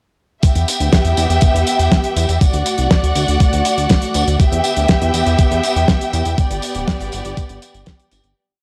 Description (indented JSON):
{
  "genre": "italo disco",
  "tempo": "121 BPM",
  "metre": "4/4",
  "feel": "straight",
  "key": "E minor",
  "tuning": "A4 = 440 Hz",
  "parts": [
    { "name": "rich symphonic string section", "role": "sustained chords", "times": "0.4-8.3 s", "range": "A3 to G5", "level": "-21 LUFS", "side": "equal", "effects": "none" },
    { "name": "damped 70s drum kit", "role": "drums", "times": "0.4-8.3 s", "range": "hi-hat, snare drum, tambourine", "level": "-22 LUFS", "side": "equal", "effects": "studio ambience" },
    { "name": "electronic kick drum", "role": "drums", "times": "0.4-8.0 s", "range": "none", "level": "-17 LUFS", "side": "equal", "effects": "overdrive, studio ambience" },
    { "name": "chorused synth bass", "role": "bass", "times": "0.6-8.3 s", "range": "D1 to E2", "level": "-21 LUFS", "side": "equal", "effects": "none" }
  ],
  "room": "small room ambience",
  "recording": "dry, gritty hardware recording, cassette tape",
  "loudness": "-15 LUFS",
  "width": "mono",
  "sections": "0.4-8.4 chorus",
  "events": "fade-out 5.7-8.4",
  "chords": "0.4 Em; 2.4 D; 4.4 Em; 6.4 G"
}